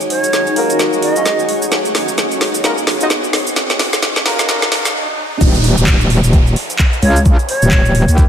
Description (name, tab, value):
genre	bass house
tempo	130 BPM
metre	4/4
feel	swing 59% on 16ths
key	Eb minor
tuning	A4 = 439 Hz
part	garage drum kit	drums	0.0-8.3 s	crash cymbal, handclaps, hi-hat, shaker, snare drum	-17 LUFS	equal	overdrive
part	riser, swell and downlifter	sound effects	1.2-8.3 s	none	-24 LUFS	right 2 dB	none
part	granular cloud pad	texture	0.0-4.9 s	Eb4 to Db5	-20 LUFS	equal	built-in reverb, sidechain pumping
part	breathy jazz flute	melody	0.1-1.7, 7.0-8.1 s	Db5 to Eb5	-19 LUFS	right 1 dB	ping-pong delay
part	dark horn section	stabs	0.6-4.8 s	Bb3 to Eb5	-21 LUFS	left 2 dB	sidechain pumping, low-pass filter, ping-pong delay
part	metallic wobble bass	bass	5.4-8.3 s	Eb1 to Eb2	-12 LUFS	equal	chorus, sidechain pumping
part	electronic kick drum	drums	5.4-8.3 s	none	-11 LUFS	equal	overdrive
room	moderate lush hall reverb, RT60 1.9 s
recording	high-pass filter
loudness	-11 LUFS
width	side -9 dB against mid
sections	0.0-5.4 A section; 5.4-8.3 B section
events	build-up 0.0-5.4; drum fill 0.0-4.9; filter sweep on horn section 0.0-5.4; filter sweep 0.0-5.4; riser 1.2-5.4; swell 4.5-5.4; stop 4.9-5.4; drop 5.4-8.3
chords	0.0 Ebmadd9; 5.4 N.C.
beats	0.33 0.80 1.26 | 1.72 2.18 2.64 3.10 | 3.56 4.03 4.49 4.95 | 5.41 5.87 6.33 6.79 | 7.26 7.72 8.18